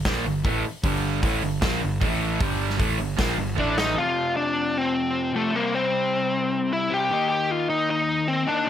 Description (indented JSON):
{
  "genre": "hard rock",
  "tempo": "153 BPM",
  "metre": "4/4",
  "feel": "straight",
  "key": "G minor",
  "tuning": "A4 = 439 Hz",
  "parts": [
    { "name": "fuzz fingered electric bass", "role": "bass", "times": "0.0-3.9 s", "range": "G1 to Bb1", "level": "-29 LUFS", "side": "equal", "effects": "overdrive" },
    { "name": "overdriven electric guitar", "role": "riff", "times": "0.1-4.0 s", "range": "G2 to Bb3", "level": "-28 LUFS", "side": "right 14 dB", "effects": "none" },
    { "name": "overdriven semi-hollow guitar", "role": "riff", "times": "0.1-8.7 s", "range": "F2 to Eb4", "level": "-28 LUFS", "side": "left 8 dB", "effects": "none" },
    { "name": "big rock drum kit", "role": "drums", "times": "0.1-3.9 s", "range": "hi-hat, kick drum, snare drum", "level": "-27 LUFS", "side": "equal", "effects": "none" },
    { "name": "bluesy overdriven lead guitar", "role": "melody", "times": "3.6-8.7 s", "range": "A3 to G4", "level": "-22 LUFS", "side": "equal", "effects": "distortion, slapback echo" }
  ],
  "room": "light reverb",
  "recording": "none",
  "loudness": "-21 LUFS",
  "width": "side -10 dB against mid",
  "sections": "0.0-4.0 A section; 4.0-8.7 B section",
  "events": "drum fill 3.6-4.0",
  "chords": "0.0 Gm; 2.0 A5; 2.4 Gm; 3.6 A5; 4.0 F5; 5.5 C5; 7.1 Eb5"
}